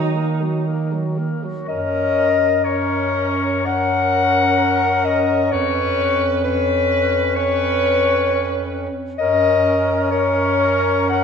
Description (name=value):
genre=classical, lyrical piece for single-reed quartet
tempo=57-67 BPM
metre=4/4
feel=rubato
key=F# major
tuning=A4 = 442 Hz
part: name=clear clarinet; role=melody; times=0.0-11.2 s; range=Gb4 to F#5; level=-19 LUFS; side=left 6 dB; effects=none
part: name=clear alto saxophone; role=second line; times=0.0-11.2 s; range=Eb4 to B4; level=-24 LUFS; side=right 5 dB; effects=none
part: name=warm tenor saxophone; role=accompaniment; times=0.0-11.2 s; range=Gb3 to C#4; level=-23 LUFS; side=left 1 dB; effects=none
part: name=bright bass clarinet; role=bass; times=0.0-11.2 s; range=E#2 to Eb3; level=-23 LUFS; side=right 2 dB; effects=none
room=wet concert hall reverb, RT60 2.3 s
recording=heard from further back in the room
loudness=-16 LUFS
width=side -6 dB against mid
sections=0.0-1.7 A section; 1.7-11.2 B section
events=none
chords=0.0 Ebm; 1.7 F#; 5.5 C#7/E#; 9.2 F#